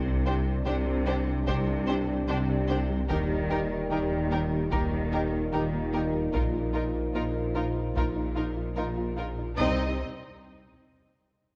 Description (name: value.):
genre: cinematic, hybrid orchestral and electronic film score.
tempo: 74 BPM.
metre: 4/4.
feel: straight.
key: C minor.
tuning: A4 = 441 Hz.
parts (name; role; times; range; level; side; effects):
dark trombone section; sustained chords; 0.0-10.0 s; G2 to G3; -38 LUFS; equal; none.
mellow French horn section; sustained chords; 0.0-10.0 s; Bb3 to Eb4; -38 LUFS; equal; none.
pure sine sub bass; bass; 0.0-10.0 s; Eb1 to C2; -38 LUFS; equal; none.
rich symphonic cello section; bass; 0.0-10.0 s; Bb2 to Eb3; -38 LUFS; equal; none.
warm symphonic double bass section; bass; 0.0-10.0 s; Bb1 to Eb2; -37 LUFS; equal; none.
warm tuba; bass; 0.0-10.0 s; Bb1 to Eb2; -37 LUFS; equal; none.
soft round pluck; arpeggios; 0.1-9.5 s; C3 to Bb4; -42 LUFS; equal; none.
warm symphonic violin section; melody; 0.3-10.0 s; Bb4 to Eb5; -41 LUFS; equal; none.
dark symphonic violin section; second line; 0.3-10.0 s; Eb4 to G4; -40 LUFS; equal; none.
warm symphonic viola section; accompaniment; 0.3-10.0 s; C4 to Eb4; -40 LUFS; equal; none.
taiko ensemble; drums; 1.5-9.8 s; none; -37 LUFS; equal; none.
room: moderate scoring stage reverb, RT60 1.9 s.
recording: worn, warbling old tape, cassette tape, warbly pitch drift.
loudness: -28 LUFS.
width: mono.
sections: 0.0-9.6 A section; 9.6-11.6 B section.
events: none.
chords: 0.0 Csus2; 3.1 Eb; 6.3 Bbsus4; 9.6 Cm.